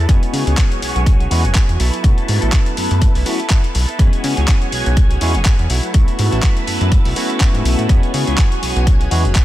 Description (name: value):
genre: filtered disco house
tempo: 123 BPM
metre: 4/4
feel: swing 56% on 16ths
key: E major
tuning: A4 = 440 Hz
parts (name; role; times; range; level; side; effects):
- phased string machine; sustained chords; 0.0-9.4 s; E4 to A5; -25 LUFS; equal; ensemble chorus, phaser, sidechain pumping, low-pass filter
- direct-recorded clean electric guitar; riff; 0.0-9.4 s; F#3 to A4; -28 LUFS; right 4 dB; sidechain pumping, low-pass filter
- fat analog bass; bass; 0.0-9.3 s; E1 to C#3; -17 LUFS; equal; tube saturation, sidechain pumping, low-pass filter
- barky tine electric piano; accompaniment; 0.1-9.2 s; G#3 to F#4; -24 LUFS; left 1 dB; overdrive, phaser, vintage 12-bit sampler grit, sidechain pumping, low-pass filter
- dusty soul sampler-style drum kit; drums; 0.1-9.4 s; handclaps, hi-hat; -23 LUFS; left 1 dB; sidechain pumping on hats
- electronic kick drum; drums; 0.1-9.4 s; none; -13 LUFS; equal; none
- egg shaker; percussion; 0.1-9.4 s; none; barely audible; none; none
room: little or no reverb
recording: none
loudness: -13 LUFS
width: side -14 dB against mid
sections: 0.0-9.4 A section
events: none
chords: 0.1 E69; 1.8 B7sus4; 4.0 E69; 5.7 B7sus4; 7.9 E69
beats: | 0.09 0.58 1.06 1.55 | 2.04 2.53 3.02 3.50 | 3.99 4.48 4.97 5.46 | 5.94 6.43 6.92 7.41 | 7.89 8.38 8.87 9.36